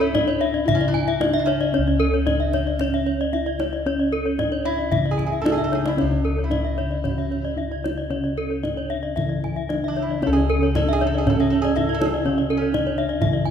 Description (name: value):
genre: Balinese gamelan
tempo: 113 BPM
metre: 4/4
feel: straight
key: C# pelog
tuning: A4 = 442 Hz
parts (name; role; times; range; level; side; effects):
- gamelan-type bronze metallophone; melody; 0.0-13.5 s; C#4 to E4; -25 LUFS; equal; none
- metal-body resonator slide guitar; second line; 0.0-13.2 s; C#4 to A4; -30 LUFS; right 3 dB; none
- gamelan-type bronze metallophone; arpeggios; 0.0-13.4 s; C#5 to E5; -26 LUFS; left 4 dB; none
- gamelan-type bossed gongs; bass; 0.0-13.5 s; C#2 to D4+35c; -25 LUFS; left 2 dB; none
- kendang; percussion; 0.1-13.5 s; none; -28 LUFS; right 2 dB; none
- gamelan-type bronze metallophone; arpeggios; 0.3-13.5 s; A4 to G#5; -28 LUFS; right 3 dB; none
- gamelan-type bronze metallophone; accompaniment; 6.0-13.5 s; C#3 to E3; -32 LUFS; left 1 dB; none
room: moderate concert hall reverb, RT60 2.1 s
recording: minimal, uncompressed stereo recording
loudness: -19 LUFS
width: side -8 dB against mid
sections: 0.0-13.5 A section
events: drum fill 5.6-6.0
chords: none